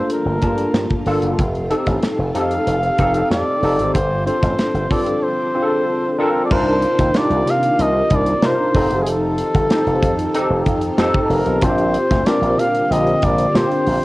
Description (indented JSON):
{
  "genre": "polished 1980s jazz-funk pop",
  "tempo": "94 BPM",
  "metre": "4/4",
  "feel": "straight",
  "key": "C dorian",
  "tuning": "A4 = 439 Hz",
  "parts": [
    { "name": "warm flugelhorn", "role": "melody", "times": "0.0-14.0 s", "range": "Ab4 to F5", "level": "-20 LUFS", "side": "equal", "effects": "cassette tape" },
    { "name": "barky tine electric piano", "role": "accompaniment", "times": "0.0-14.0 s", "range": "D3 to A5", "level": "-19 LUFS", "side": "equal", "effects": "overdrive, ensemble chorus, cassette tape" },
    { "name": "string machine, violins", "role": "sustained chords", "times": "0.0-14.0 s", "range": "C3 to F4", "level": "-32 LUFS", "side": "equal", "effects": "ensemble chorus, cassette tape" },
    { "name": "modern studio drum kit", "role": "drums", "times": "0.1-14.0 s", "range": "crash cymbal, hi-hat, kick drum, snare drum", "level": "-21 LUFS", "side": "equal", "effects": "cassette tape" },
    { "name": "slap bass with an envelope filter", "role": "bass", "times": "0.3-14.0 s", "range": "F1 to C3", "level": "-22 LUFS", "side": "equal", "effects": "none" }
  ],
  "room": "light reverb",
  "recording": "home recording on cassette",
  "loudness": "-15 LUFS",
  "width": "side -19 dB against mid",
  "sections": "0.0-6.5 A section; 6.5-14.0 B section",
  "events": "none",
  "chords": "0.0 Gm7; 1.4 F7; 3.9 G7sus4; 6.5 Cm11; 8.7 F7; 11.6 Bb69",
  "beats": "0.11 0.75 | 1.39 2.03 2.67 3.31 | 3.95 4.59 5.23 5.87 | 6.51 7.15 7.79 8.43 | 9.07 9.71 10.35 10.99 | 11.63 12.27 12.91 13.55"
}